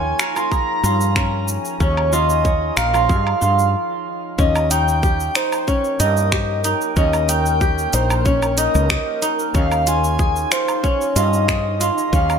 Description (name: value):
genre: organic downtempo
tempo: 93 BPM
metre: 4/4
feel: straight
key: Eb mixolydian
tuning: A4 = 440 Hz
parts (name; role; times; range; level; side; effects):
- breathy flute-like synth lead; melody; 0.0-12.4 s; C5 to Bb5; -21 LUFS; equal; wide subtle chorus, tape echo
- granular cloud pad; sustained chords; 0.0-12.4 s; Eb4 to Bb5; -30 LUFS; right 1 dB; built-in reverb, sidechain pumping
- kora; arpeggios; 0.0-12.4 s; Db4 to Db5; -22 LUFS; right 2 dB; tape echo
- woody fretless electric bass; bass; 0.0-12.4 s; Bb1 to G2; -20 LUFS; equal; none
- quartz singing bowl; texture; 0.0-3.7 s; F3 to F4; -43 LUFS; left 5 dB; none
- afro-pop drum kit; drums; 0.2-12.4 s; finger snaps, hi-hat, shaker, woodblock; -23 LUFS; right 1 dB; overdrive, studio reverb
- electronic kick drum; drums; 0.5-12.3 s; none; -20 LUFS; equal; studio reverb
room: moderate echo chamber reverb, RT60 2.0 s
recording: none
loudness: -16 LUFS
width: side -7 dB against mid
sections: 0.0-4.4 A section; 4.4-12.4 B section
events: stop 3.7-4.4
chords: 0.0 Db6/Eb; 4.4 Eb7; 9.5 Db6/Eb